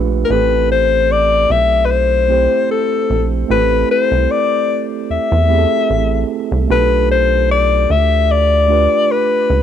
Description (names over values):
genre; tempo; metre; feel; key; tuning
contemporary R&B; 75 BPM; 4/4; swing 54% on 16ths; A minor; A4 = 440 Hz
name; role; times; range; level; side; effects
mellow tine electric piano; accompaniment; 0.0-9.6 s; A3 to C5; -20 LUFS; right 14 dB; slow stereo tremolo, cassette tape
rubbery square bass; bass; 0.0-9.6 s; A1 to E2; -16 LUFS; right 1 dB; none
clear alto saxophone; melody; 0.3-9.6 s; A4 to E5; -14 LUFS; left 6 dB; cassette tape
room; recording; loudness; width
little or no reverb; home recording on cassette; -12 LUFS; side -9 dB against mid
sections
0.3-9.6 A section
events
none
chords
0.3 Am7; 6.7 G9/B